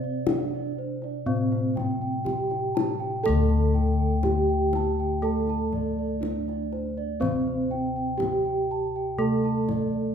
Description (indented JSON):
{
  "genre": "Javanese gamelan",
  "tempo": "61 BPM",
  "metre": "4/4",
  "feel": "straight",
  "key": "unclear",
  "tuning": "A4 = 440 Hz",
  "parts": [
    { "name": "gamelan-type bronze metallophone", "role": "melody", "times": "0.0-10.1 s", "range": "C4-25c to A4", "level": "-28 LUFS", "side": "right 2 dB", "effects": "none" },
    { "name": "gamelan-type bronze metallophone", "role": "accompaniment", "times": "0.0-10.1 s", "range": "C3-25c to A3", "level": "-30 LUFS", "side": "right 1 dB", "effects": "none" },
    { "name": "gamelan-type bronze metallophone", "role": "arpeggios", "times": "0.0-10.1 s", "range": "C5-25c to A5", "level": "-33 LUFS", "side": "right 2 dB", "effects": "none" },
    { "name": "gamelan-type bossed gongs", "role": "bass", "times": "0.0-10.1 s", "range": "D2 to C5-25c", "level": "-29 LUFS", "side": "left 3 dB", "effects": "none" },
    { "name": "kendang", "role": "percussion", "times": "0.3-9.9 s", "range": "none", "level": "-32 LUFS", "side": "left 5 dB", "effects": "none" }
  ],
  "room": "moderate recital hall reverb, RT60 1.5 s",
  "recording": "minimal, uncompressed stereo recording",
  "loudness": "-23 LUFS",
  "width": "side -7 dB against mid",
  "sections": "0.0-10.1 A section",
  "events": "none",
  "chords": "none"
}